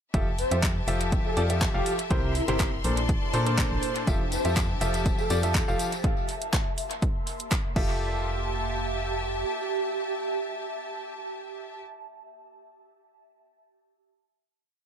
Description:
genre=piano house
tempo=122 BPM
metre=4/4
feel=straight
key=F major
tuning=A4 = 438 Hz
part: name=clear symphonic string section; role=sustained chords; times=0.1-11.8 s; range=G4 to C6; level=-35 LUFS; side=left 2 dB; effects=sidechain pumping
part: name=clear grand piano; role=riff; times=0.1-11.8 s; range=Bb2 to F5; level=-31 LUFS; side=left 1 dB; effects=sidechain pumping, analog delay
part: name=organ-like FM bass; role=bass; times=0.1-9.4 s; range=F1 to Bb2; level=-29 LUFS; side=equal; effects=sidechain pumping
part: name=electronic kick drum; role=drums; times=0.1-7.9 s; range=none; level=-27 LUFS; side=equal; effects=none
part: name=garage drum kit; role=drums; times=0.1-7.9 s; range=crash cymbal, handclaps, hi-hat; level=-33 LUFS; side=equal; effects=overdrive, analog delay
part: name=ethereal airy pad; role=texture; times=0.9-12.2 s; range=Bb3 to C6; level=-34 LUFS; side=right 4 dB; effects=ensemble chorus, built-in reverb, phaser, sidechain pumping
part: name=breathy flute-like synth lead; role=melody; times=0.4-5.4 s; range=E4 to C5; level=-33 LUFS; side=left 1 dB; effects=ensemble chorus, analog delay
part: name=tambourine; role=percussion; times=4.1-6.0 s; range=none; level=-40 LUFS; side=left 4 dB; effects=analog delay
room=little or no reverb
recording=echo-heavy mix, lossy compression artefacts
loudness=-24 LUFS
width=side -8 dB against mid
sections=0.1-8.0 drop; 8.0-11.9 final note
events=drop 0.1-8.0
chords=0.1 Fmaj9; 2.1 C7; 2.8 Bbmaj9; 4.1 Fmaj9; 6.0 C7; 6.8 Bbmaj9; 7.5 Bbadd9; 7.8 Fmaj9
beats=| 0.14 0.63 1.12 1.61 | 2.11 2.60 3.09 3.58 | 4.07 4.57 5.06 5.55 | 6.04 6.53 7.02 7.52 | 8.01 8.50 8.99 9.48 | 9.97 10.47 10.96 11.45

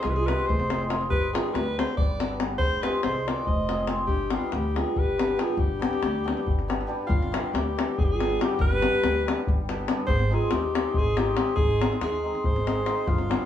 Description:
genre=balkan folk, Balkan wedding band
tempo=281 BPM (eighths)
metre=7/8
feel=straight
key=G phrygian dominant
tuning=A4 = 440 Hz
part: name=breathy alto saxophone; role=melody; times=0.0-13.5 s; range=F4 to Eb5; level=-29 LUFS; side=equal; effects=none
part: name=bright bass ocarina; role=second line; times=0.0-13.5 s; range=D4 to C5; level=-32 LUFS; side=equal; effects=none
part: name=hammered dulcimer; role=accompaniment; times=0.0-13.5 s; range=G3 to Ab4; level=-31 LUFS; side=left 1 dB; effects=none
part: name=upright bass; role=bass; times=0.0-13.3 s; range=F1 to Eb2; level=-30 LUFS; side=equal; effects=none
part: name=davul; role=percussion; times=0.0-13.4 s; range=none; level=-27 LUFS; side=left 3 dB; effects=none
room=moderate studio reverb, RT60 0.8 s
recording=band playing live in one room, small room reverb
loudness=-23 LUFS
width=side -10 dB against mid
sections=0.0-7.1 A section; 7.1-13.5 B section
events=none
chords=0.0 Fm; 1.1 G; 2.6 Fm; 4.1 G; 10.1 Ab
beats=0.03 0.24 0.46 0.67 0.88 | 1.10 1.31 1.52 1.74 1.95 2.17 2.38 | 2.59 2.81 3.02 3.23 3.45 3.66 3.88 | 4.09 4.30 4.52 4.73 4.95 5.16 5.38 | 5.59 5.80 6.02 6.23 6.45 6.66 6.87 | 7.09 7.30 7.52 7.73 7.95 8.16 8.37 | 8.59 8.80 9.02 9.23 9.44 9.66 9.87 | 10.09 10.30 10.51 10.73 10.94 11.15 11.37 | 11.58 11.79 12.01 12.22 12.43 12.65 12.86 | 13.07 13.29

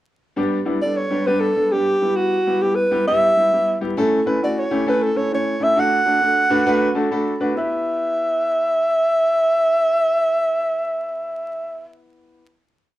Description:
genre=soul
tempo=134 BPM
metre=4/4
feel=swing 64% on 8ths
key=E dorian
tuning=A4 = 440 Hz
part: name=warm grand piano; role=accompaniment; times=0.4-12.4 s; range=G3 to B5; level=-21 LUFS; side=left 1 dB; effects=none
part: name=breathy alto saxophone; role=melody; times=0.8-11.9 s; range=F#4 to F#5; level=-18 LUFS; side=right 1 dB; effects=none
room=moderate small room reverb, RT60 0.6 s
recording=band playing live in one room, vinyl crackle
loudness=-17 LUFS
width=side -15 dB against mid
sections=0.4-7.6 pre-chorus; 7.6-11.1 final chord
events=grand piano fill 6.2-7.6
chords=0.4 G; 1.9 Em; 4.0 A; 5.8 D; 7.6 Em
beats=| 0.37 0.82 1.27 1.72 | 2.17 2.62 3.07 3.52 | 3.97 4.42 4.87 5.32 | 5.77 6.21 6.66 7.11 | 7.56 8.01 8.45 8.90 | 9.35 9.80 10.25 10.70

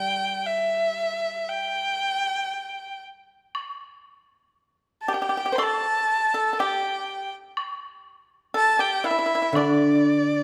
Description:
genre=chinese traditional, Chinese chamber ensemble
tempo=60 BPM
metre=2/4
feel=rubato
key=unclear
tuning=A4 = 438 Hz
part: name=clear erhu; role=melody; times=0.0-10.4 s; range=D5 to C6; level=-26 LUFS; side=equal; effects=none
part: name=guzheng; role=accompaniment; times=0.0-2.5, 9.5-10.4 s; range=D3 to G3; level=-24 LUFS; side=equal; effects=none
part: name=woodblock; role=percussion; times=3.5-9.8 s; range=none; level=-35 LUFS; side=equal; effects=none
part: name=pipa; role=second line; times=5.1-10.4 s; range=D4 to C5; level=-29 LUFS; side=equal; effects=none
room=wet recital hall reverb, RT60 1.7 s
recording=none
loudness=-24 LUFS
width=mono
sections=0.0-3.5 A section; 3.5-10.4 B section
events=none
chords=none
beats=0.45 | 1.46 2.50 | 3.54 4.57 | 5.58 6.58 | 7.57 8.55 | 9.55

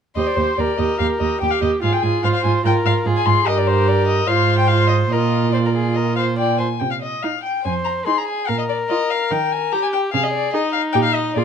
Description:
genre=quick classical-period movement for string quartet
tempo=145 BPM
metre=4/4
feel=straight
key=Eb major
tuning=A4 = 440 Hz
part: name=dark violin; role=melody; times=0.2-11.4 s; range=C5 to C6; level=-21 LUFS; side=left 7 dB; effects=none
part: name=dark violin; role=second line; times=0.2-11.4 s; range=Eb4 to D5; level=-22 LUFS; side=left 2 dB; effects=none
part: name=warm viola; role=accompaniment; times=0.2-11.4 s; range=Eb4 to Ab4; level=-23 LUFS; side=right 3 dB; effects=none
part: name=rich cello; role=bass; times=0.2-11.4 s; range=Eb2 to Eb3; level=-20 LUFS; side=right 4 dB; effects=none
room=light reverb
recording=dark, warm production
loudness=-16 LUFS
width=side -7 dB against mid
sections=0.2-11.4 A section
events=none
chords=0.2 Eb; 1.8 Fm/Ab; 3.5 Gmadd11; 4.3 Fm/Ab; 5.1 Bb; 6.8 Cm; 7.6 Fm; 8.5 Bb5; 9.3 Eb; 10.1 Ab/C; 10.9 Eb/Bb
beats=| 0.16 0.58 1.00 1.42 | 1.83 2.24 2.65 3.06 | 3.47 3.88 4.29 4.71 | 5.12 5.54 5.96 6.39 | 6.81 7.23 7.64 8.06 | 8.47 8.89 9.30 9.71 | 10.13 10.54 10.95 11.36

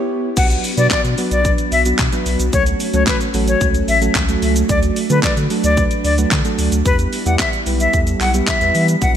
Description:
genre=dance-pop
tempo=111 BPM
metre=4/4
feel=straight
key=B minor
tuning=A4 = 441 Hz
part: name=soft electric-piano-like synth keys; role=accompaniment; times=0.0-9.2 s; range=F#3 to D5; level=-22 LUFS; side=right 4 dB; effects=chorus, sidechain pumping
part: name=airy breathy pad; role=sustained chords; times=0.0-9.2 s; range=F#3 to G4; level=-25 LUFS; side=right 1 dB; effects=chorus, sidechain pumping
part: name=bright reedy silver concert flute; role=melody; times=0.4-9.1 s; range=B4 to F#5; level=-19 LUFS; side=left 3 dB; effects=ping-pong delay
part: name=warm sub bass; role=bass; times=0.4-9.2 s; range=A1 to E3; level=-19 LUFS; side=equal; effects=sidechain pumping
part: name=pop drum kit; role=drums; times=0.4-9.1 s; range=crash cymbal, handclaps, hi-hat, kick drum, shaker, snare drum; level=-19 LUFS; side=equal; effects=none
room=light reverb, digital ambience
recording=bright 1980s-style digital production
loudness=-14 LUFS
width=side -9 dB against mid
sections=0.4-9.2 A section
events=break 0.0-0.4; drop 0.4-9.2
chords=0.4 Bm; 2.5 F#m; 4.7 D; 6.9 Em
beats=| 0.37 0.91 1.45 1.99 | 2.53 3.07 3.61 4.15 | 4.69 5.23 5.78 6.32 | 6.86 7.40 7.94 8.48 | 9.02

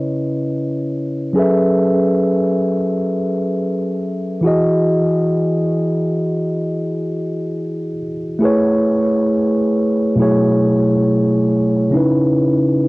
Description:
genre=hip hop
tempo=free time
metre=none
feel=none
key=E major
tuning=A4 = 440 Hz
part: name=mellow tine electric piano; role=solo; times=0.0-12.9 s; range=B2 to E5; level=-15 LUFS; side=equal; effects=low-pass filter, cassette tape, tape echo
room=wet small room reverb, RT60 0.5 s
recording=home recording on cassette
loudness=-15 LUFS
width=side -22 dB against mid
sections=0.0-11.9 A section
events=none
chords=0.0 C#m9; 1.3 F#m11; 4.4 Emaj9; 8.4 Amaj9; 10.2 B13sus4; 11.9 C#m9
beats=free time

